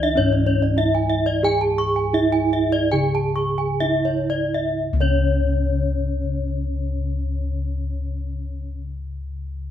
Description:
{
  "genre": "Balinese gamelan",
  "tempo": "56-107 BPM",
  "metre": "4/4",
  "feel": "straight",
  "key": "C# pelog",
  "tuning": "A4 = 440 Hz",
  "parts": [
    { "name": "gamelan-type bronze metallophone", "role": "melody", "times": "0.0-8.8 s", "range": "C#4 to G#4-30c", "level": "-24 LUFS", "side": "right 4 dB", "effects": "none" },
    { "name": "gamelan-type bronze metallophone", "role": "arpeggios", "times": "0.0-8.8 s", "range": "C#5 to C#6", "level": "-24 LUFS", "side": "left 2 dB", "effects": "none" },
    { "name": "gamelan-type bossed gongs", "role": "bass", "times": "0.0-8.7 s", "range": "C#2 to G#4-30c", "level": "-23 LUFS", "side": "left 2 dB", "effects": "none" },
    { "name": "gamelan-type bronze metallophone", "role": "arpeggios", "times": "0.3-8.8 s", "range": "C#5 to A5-20c", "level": "-31 LUFS", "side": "right 6 dB", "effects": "none" }
  ],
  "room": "light reverb",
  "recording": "close, detailed microphones",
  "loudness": "-19 LUFS",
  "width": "side -10 dB against mid",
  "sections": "0.0-4.8 A section; 4.8-9.1 B section",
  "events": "slowing down 0.0-4.8",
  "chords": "none",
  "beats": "0.18 0.78 | 1.43 2.14 2.93 3.81 | 4.82 5.88 6.95 8.02"
}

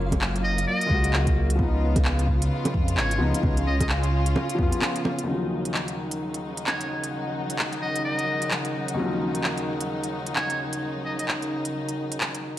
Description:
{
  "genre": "future garage",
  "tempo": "130 BPM",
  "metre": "4/4",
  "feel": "swing 60% on 16ths",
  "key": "Eb minor",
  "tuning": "A4 = 438 Hz",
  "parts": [
    { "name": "rich chamber string section", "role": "sustained chords", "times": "0.0-12.6 s", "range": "Db3 to F4", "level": "-30 LUFS", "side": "equal", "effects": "sidechain pumping, low-pass filter" },
    { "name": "dark detuned saw bass", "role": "bass", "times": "0.0-4.7 s", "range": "Gb1 to F2", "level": "-24 LUFS", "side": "equal", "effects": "sidechain pumping" },
    { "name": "flickering grainy texture", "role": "texture", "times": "0.0-12.6 s", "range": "Gb3 to Gb5", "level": "-36 LUFS", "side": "left 1 dB", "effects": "built-in reverb" },
    { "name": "electronic kick drum", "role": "drums", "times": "0.1-4.7 s", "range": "none", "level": "-25 LUFS", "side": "equal", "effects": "none" },
    { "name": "organic electronic drum kit", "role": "drums", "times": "0.1-12.4 s", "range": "bongos, handclaps, hi-hat", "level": "-28 LUFS", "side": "right 1 dB", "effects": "none" },
    { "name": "trumpet with metal mute", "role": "melody", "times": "0.4-3.9, 6.7-11.3 s", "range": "Db5 to Eb5", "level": "-30 LUFS", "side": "equal", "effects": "tape echo" },
    { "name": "felt-muted upright piano", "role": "accompaniment", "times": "0.9-12.6 s", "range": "Eb2 to Gb4", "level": "-32 LUFS", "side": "left 2 dB", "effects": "sidechain pumping, low-pass filter, tape echo" }
  ],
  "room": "wet recital hall reverb, RT60 1.6 s",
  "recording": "vinyl crackle",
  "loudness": "-23 LUFS",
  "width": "side -13 dB against mid",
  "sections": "0.0-5.3 A section; 5.3-12.6 B section",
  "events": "kick drops out 4.8-5.3; filter sweep on felt piano 5.3-12.6",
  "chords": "0.0 Gbmaj7; 1.6 Db7; 5.3 Ebm7",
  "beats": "0.21 0.67 1.13 | 1.59 2.05 2.51 2.98 | 3.44 3.90 4.36 4.82 | 5.28 5.74 6.21 6.67 | 7.13 7.59 8.05 8.51 | 8.97 9.44 9.90 10.36 | 10.82 11.28 11.74 12.21"
}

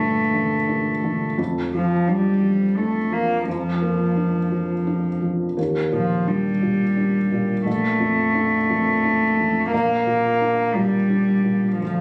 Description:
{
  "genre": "neoclassical piano and strings",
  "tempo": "86 BPM",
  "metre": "3/4",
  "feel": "rubato",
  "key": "G minor",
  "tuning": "A4 = 441 Hz",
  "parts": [
    { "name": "warm cello", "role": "second line", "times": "0.0-12.0 s", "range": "F3 to Bb3", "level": "-22 LUFS", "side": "equal", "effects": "none" },
    { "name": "felt-muted upright piano", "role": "accompaniment", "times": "0.0-12.0 s", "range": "Bb1 to D4", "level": "-28 LUFS", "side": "equal", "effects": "none" }
  ],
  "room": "light reverb",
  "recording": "recorded on a phone in the room, club reverb, compression",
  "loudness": "-21 LUFS",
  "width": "mono",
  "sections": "0.0-12.0 A section",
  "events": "none",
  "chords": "0.0 Gmadd9; 1.4 Bb/F; 5.6 Ebmaj7; 7.7 Bbmaj7; 9.7 Gm/Bb",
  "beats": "0.69 | 1.38 2.07 2.76 | 3.46 4.16 4.87 | 5.58 6.28 6.97 | 7.66 8.35 9.04 | 9.72 10.40 11.10 | 11.81"
}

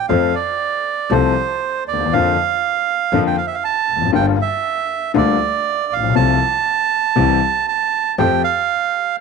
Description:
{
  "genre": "tango",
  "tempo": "119 BPM",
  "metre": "4/4",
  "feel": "rubato",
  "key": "F major",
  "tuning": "A4 = 440 Hz",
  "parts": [
    { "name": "bandoneon", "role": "melody", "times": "0.0-9.2 s", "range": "C5 to A5", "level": "-18 LUFS", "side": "right 10 dB", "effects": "none" },
    { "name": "warm concert grand piano", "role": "accompaniment", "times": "0.1-8.4 s", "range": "G1 to A4", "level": "-18 LUFS", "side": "left 11 dB", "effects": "none" },
    { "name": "clear double bass", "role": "bass", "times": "0.1-8.4 s", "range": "F1 to F2", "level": "-22 LUFS", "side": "right 1 dB", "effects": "none" }
  ],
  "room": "light reverb",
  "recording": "1960s-style stereo with parts hard left and right, nothing above 11.0 kHz",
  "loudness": "-15 LUFS",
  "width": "side -5 dB against mid",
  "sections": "0.1-9.2 A section",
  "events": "none",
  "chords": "0.1 F; 2.1 Bb/F; 4.1 Gm7; 6.2 F/C; 7.2 C; 8.2 Fadd9",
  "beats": "| 0.09 0.60 1.11 1.62 | 2.13 2.63 3.13 3.64 | 4.14 4.65 5.15 5.65 | 6.16 6.66 7.17 7.68 | 8.19 8.70"
}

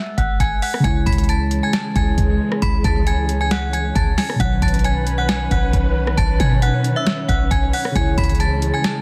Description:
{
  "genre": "hip hop, trap",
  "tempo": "135 BPM",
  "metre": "4/4",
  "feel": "half-time",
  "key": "C# minor",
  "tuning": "A4 = 440 Hz",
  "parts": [
    { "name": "metallic FM bell", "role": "melody", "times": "0.0-9.0 s", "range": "E5 to B6", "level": "-26 LUFS", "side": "equal", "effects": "chorus, low-pass filter, digital delay" },
    { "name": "muted felt-like synth keys", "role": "accompaniment", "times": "0.0-9.0 s", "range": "B2 to C#5", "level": "-28 LUFS", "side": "equal", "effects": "chorus, low-pass filter" },
    { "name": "clean 808-style bass", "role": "bass", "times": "0.2-8.7 s", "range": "G#1 to B2", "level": "-23 LUFS", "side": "equal", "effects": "none" },
    { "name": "booming analog drum machine", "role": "drums", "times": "0.2-9.0 s", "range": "hi-hat, kick drum, rim click, snare drum", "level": "-23 LUFS", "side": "equal", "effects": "overdrive" },
    { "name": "dark symphonic string section", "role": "sustained chords", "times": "0.8-9.0 s", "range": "D#3 to B4", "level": "-28 LUFS", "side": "equal", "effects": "none" }
  ],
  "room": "little or no reverb",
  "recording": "dense, heavily limited modern master, vinyl crackle",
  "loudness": "-18 LUFS",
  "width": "mono",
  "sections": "0.0-9.0 A section",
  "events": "none",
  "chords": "0.0 G#m; 0.8 C#m; 4.4 Badd9; 8.0 C#m",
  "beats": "0.40 | 0.84 1.29 1.73 2.18 | 2.62 3.07 3.51 3.96 | 4.40 4.84 5.29 5.73 | 6.18 6.62 7.07 7.51 | 7.96 8.40 8.84"
}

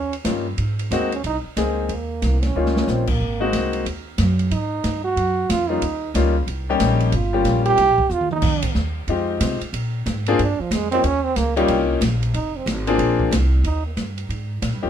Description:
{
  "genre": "jazz, small-group swing and bop",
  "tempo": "184 BPM",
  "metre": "4/4",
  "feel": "swing 63% on 8ths",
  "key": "Eb mixolydian",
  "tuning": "A4 = 440 Hz",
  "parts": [
    { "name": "warm trombone", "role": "second line", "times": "0.0-13.9 s", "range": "F3 to G4", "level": "-22 LUFS", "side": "right 4 dB", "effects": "none" },
    { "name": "upright bass", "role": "bass", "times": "0.0-14.9 s", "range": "F1 to C3", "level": "-22 LUFS", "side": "right 1 dB", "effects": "none" },
    { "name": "open jazz drum kit", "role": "drums", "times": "0.1-14.7 s", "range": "crash cymbal, hi-hat, kick drum, ride cymbal, snare drum, toms", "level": "-27 LUFS", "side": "equal", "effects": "none" },
    { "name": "warm concert grand piano", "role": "accompaniment", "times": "0.2-14.9 s", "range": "G3 to Ab4", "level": "-21 LUFS", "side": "left 5 dB", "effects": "none" }
  ],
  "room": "light reverb",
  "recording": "minimal, uncompressed stereo recording",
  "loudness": "-18 LUFS",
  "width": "side -9 dB against mid",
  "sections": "0.0-13.7 A section; 13.7-14.9 A section",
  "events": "trombone solo 0.0-14.9; drum fill 2.6-2.9, 8.1-8.4",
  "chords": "0.0 Eb9; 0.6 Ab9; 1.9 Eb9; 3.2 Ab9; 5.8 Eb9; 7.1 Gm7b5; 7.8 C7; 8.4 Fm7; 9.7 Bb7(no3); 11.0 Eb9; 12.3 Fm; 13.0 Bb9; 13.7 Eb",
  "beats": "0.26 | 0.59 0.92 1.25 1.57 | 1.90 2.23 2.56 2.88 | 3.21 3.54 3.86 4.19 | 4.52 4.84 5.17 5.50 | 5.82 6.15 6.48 6.80 | 7.13 7.46 7.78 8.11 | 8.43 8.76 9.09 9.41 | 9.74 10.06 10.39 10.72 | 11.04 11.37 11.70 12.02 | 12.35 12.67 13.00 13.33 | 13.65 13.98 14.31 14.63"
}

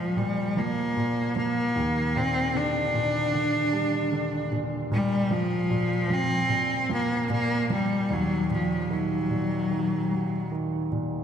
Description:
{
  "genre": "pop ballad",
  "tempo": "75 BPM",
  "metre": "4/4",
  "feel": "straight",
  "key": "unclear",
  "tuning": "A4 = 445 Hz",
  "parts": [
    { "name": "bright cello", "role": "melody", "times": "0.0-10.5 s", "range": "F3 to D4", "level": "-26 LUFS", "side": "left 1 dB", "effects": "none" },
    { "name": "warm concert grand piano", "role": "accompaniment", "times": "0.0-11.2 s", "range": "Eb2 to G3", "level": "-28 LUFS", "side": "right 1 dB", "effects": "none" }
  ],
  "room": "wet concert hall reverb, RT60 2.6 s",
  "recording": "none",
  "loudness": "-24 LUFS",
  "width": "side -8 dB against mid",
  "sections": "0.0-11.2 A section",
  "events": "none",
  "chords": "0.0 Bb5; 1.8 Ebmaj7; 4.9 Bb5; 8.1 Ebm",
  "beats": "0.17 0.96 | 1.76 2.55 3.34 4.13 | 4.92 5.71 6.50 7.30 | 8.10 8.90 9.71 10.51"
}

